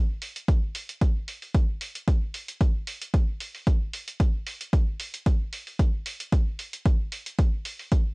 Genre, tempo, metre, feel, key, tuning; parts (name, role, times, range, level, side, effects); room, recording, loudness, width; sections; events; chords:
techno; 113 BPM; 4/4; swing 54% on 16ths
electronic hi-hat; drums; 0.2-8.0 s; -36 LUFS; right 1 dB
electronic kick drum; drums; 0.5-8.0 s; -22 LUFS; equal
little or no reverb; dry, gritty hardware recording; -24 LUFS; side -31 dB against mid
0.0-8.1 A section